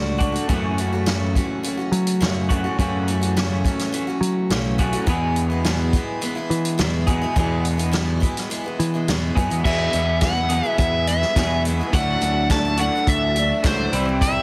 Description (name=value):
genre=folk rock and heartland rock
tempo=105 BPM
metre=4/4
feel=straight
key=unclear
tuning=A4 = 440 Hz
part: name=picked steel-string acoustic guitar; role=accompaniment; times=0.0-14.4 s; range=E2 to F#4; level=-30 LUFS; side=equal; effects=none
part: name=electric guitar through a small old amp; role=riff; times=0.0-14.4 s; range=E2 to G#4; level=-29 LUFS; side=equal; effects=analog chorus
part: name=picked electric bass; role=bass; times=0.0-14.4 s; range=B1 to F#3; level=-26 LUFS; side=equal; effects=none
part: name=vintage drum kit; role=drums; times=0.2-14.3 s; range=crash cymbal, hi-hat, kick drum, snare drum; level=-26 LUFS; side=equal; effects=none
part: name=bright tonewheel organ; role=sustained chords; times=9.6-14.4 s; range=E3 to E5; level=-37 LUFS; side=equal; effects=none
part: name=overdriven slide guitar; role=melody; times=9.7-14.4 s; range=C5 to A5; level=-24 LUFS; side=equal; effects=tape echo
room=light reverb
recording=heavily compressed radio sound, multiband compression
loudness=-21 LUFS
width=mono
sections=0.0-9.7 A section; 9.7-14.4 B section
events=none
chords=0.5 F#m7; 5.1 E; 11.9 Dadd9; 13.9 C